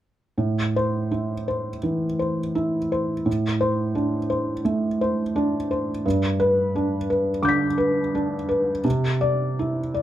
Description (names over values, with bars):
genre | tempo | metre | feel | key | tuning
neoclassical minimalist piano | 85 BPM | 4/4 | rubato | A minor | A4 = 436 Hz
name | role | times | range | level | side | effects
felt-muted upright piano | solo | 0.4-10.0 s | G2 to B6 | -21 LUFS | equal | none
room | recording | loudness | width
light reverb | close, detailed microphones | -21 LUFS | side -12 dB against mid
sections
0.4-10.0 A section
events
none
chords
0.4 Am; 3.3 D5/A; 6.0 G; 8.8 Cadd9